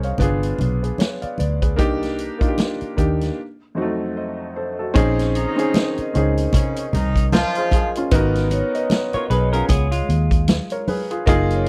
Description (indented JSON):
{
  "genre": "lush 1970s-style soul",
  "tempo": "76 BPM",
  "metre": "4/4",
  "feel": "swing 58% on 16ths",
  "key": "Bb minor",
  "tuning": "A4 = 440 Hz",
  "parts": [
    { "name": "clear concert grand piano", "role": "accompaniment", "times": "0.0-11.7 s", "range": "F2 to F5", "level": "-25 LUFS", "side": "equal", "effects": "none" },
    { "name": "vintage muted fingered electric bass", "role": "bass", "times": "0.0-11.7 s", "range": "Gb1 to Eb2", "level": "-23 LUFS", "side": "equal", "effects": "none" },
    { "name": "vintage drum kit", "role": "drums", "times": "0.0-11.7 s", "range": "hi-hat, kick drum, snare drum", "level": "-23 LUFS", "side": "equal", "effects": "none" },
    { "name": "congas", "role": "percussion", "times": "0.2-11.5 s", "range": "none", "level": "-29 LUFS", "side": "equal", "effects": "none" },
    { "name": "warm horn section", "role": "stabs", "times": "5.4-11.7 s", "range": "Db3 to F4", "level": "-27 LUFS", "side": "equal", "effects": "none" },
    { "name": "vibraphone with medium hard mallets", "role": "texture", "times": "5.7-11.7 s", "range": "Bb4 to Eb5", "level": "-32 LUFS", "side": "equal", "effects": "none" },
    { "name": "semi-hollow electric guitar", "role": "riff", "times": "9.1-11.1 s", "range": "Ab3 to Db5", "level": "-28 LUFS", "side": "equal", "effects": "lush chorus" }
  ],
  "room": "light reverb",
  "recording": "dry, close 1970s-style studio recording",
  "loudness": "-20 LUFS",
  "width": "mono",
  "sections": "0.0-5.0 A section; 5.0-11.7 B section",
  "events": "break 3.4-5.0",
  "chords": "0.2 G7b9; 1.8 Cm7; 3.4 F7b9; 5.0 Bbm11; 8.1 Abm7; 9.7 Db"
}